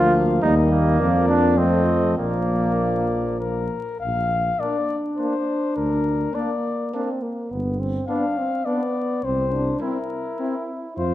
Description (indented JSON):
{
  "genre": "classical, brass quintet",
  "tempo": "103 BPM",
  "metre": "3/4",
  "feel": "rubato",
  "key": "Bb major",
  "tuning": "A4 = 440 Hz",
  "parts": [
    { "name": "mellow cornet", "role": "melody", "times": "0.0-11.1 s", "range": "Bb4 to F5", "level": "-26 LUFS", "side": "left 5 dB", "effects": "none" },
    { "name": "mellow trumpet", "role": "second line", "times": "0.0-10.5 s", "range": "Bb3 to F4", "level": "-24 LUFS", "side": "right 2 dB", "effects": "none" },
    { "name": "clear French horn", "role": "accompaniment", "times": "0.0-10.6 s", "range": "A3 to C4", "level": "-28 LUFS", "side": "left 3 dB", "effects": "none" },
    { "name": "warm trombone", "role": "accompaniment", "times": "0.0-11.1 s", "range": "F3 to F4", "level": "-26 LUFS", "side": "right 1 dB", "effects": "none" },
    { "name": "mellow tuba", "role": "bass", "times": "0.0-11.1 s", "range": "G1 to F2", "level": "-23 LUFS", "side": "right 1 dB", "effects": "none" }
  ],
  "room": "wet recital hall reverb, RT60 1.4 s",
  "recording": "vinyl crackle",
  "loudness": "-20 LUFS",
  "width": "side -14 dB against mid",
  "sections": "0.0-4.0 A section; 4.0-11.1 B section",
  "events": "none",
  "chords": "0.4 Eb; 1.0 Bb/F; 1.6 F7; 2.2 Bb; 5.8 Bb/D; 7.5 G7; 9.2 C7"
}